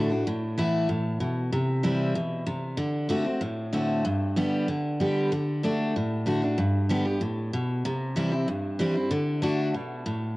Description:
bluegrass; 190 BPM; 4/4; straight; A4 = 441 Hz
picked steel-string acoustic guitar; solo; 0.0-10.4 s; G2 to G4; -24 LUFS; equal
moderate spring reverb, RT60 2.7 s; home recording on cassette; -24 LUFS; side -20 dB against mid
0.0-10.4 A section
0.3 Asus2; 1.5 C; 2.8 D7; 4.0 G; 5.3 D; 6.6 G; 7.8 C; 9.1 D
| 0.25 0.57 0.89 1.20 | 1.52 1.83 2.15 2.46 | 2.78 3.10 3.41 3.73 | 4.04 4.36 4.68 4.99 | 5.31 5.63 5.94 6.26 | 6.58 6.89 7.21 7.53 | 7.84 8.16 8.48 8.79 | 9.11 9.43 9.74 10.06

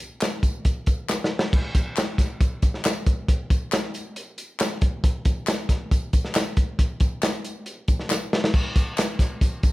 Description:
soul; 137 BPM; 4/4; straight
tambourine and handclaps; percussion; 0.0-9.7 s; -33 LUFS; left 3 dB
crunchy breakbeat drum kit; drums; 0.2-9.7 s; crash cymbal, hi-hat, kick drum, snare drum; -21 LUFS; equal
light reverb; -21 LUFS; side -18 dB against mid
0.0-1.5 A section; 1.5-9.7 B section
drum fill 1.1-1.5, 8.1-8.5
0.22 0.66 1.09 | 1.53 1.97 2.41 2.85 | 3.29 3.72 4.16 4.60 | 5.04 5.47 5.91 6.35 | 6.79 7.23 7.66 8.10 | 8.54 8.98 9.41

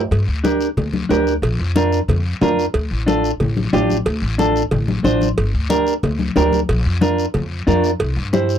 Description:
latin, cumbia; 183 BPM; 4/4; straight; A4 = 442 Hz
upright bass; bass; 0.0-8.6 s; G1 to G2; -20 LUFS; equal
congas; percussion; 0.1-8.5 s; -22 LUFS; left 4 dB
cowbell and timbales; percussion; 0.1-8.2 s; -24 LUFS; right 4 dB
guiro; percussion; 0.1-8.6 s; -33 LUFS; left 6 dB
clean electric guitar; accompaniment; 0.4-8.6 s; D4 to C5; -17 LUFS; right 2 dB
little or no reverb; dry, close 1970s-style studio recording; -16 LUFS; side -9 dB against mid
0.1-8.6 A section
0.1 Gm; 1.4 Bb; 2.7 Dm; 5.4 Gm; 6.7 Bb; 8.0 C
| 0.12 0.45 0.78 1.10 | 1.43 1.76 2.09 2.42 | 2.75 3.08 3.40 3.73 | 4.06 4.39 4.72 5.05 | 5.38 5.71 6.03 6.36 | 6.69 7.02 7.35 7.67 | 8.00 8.33

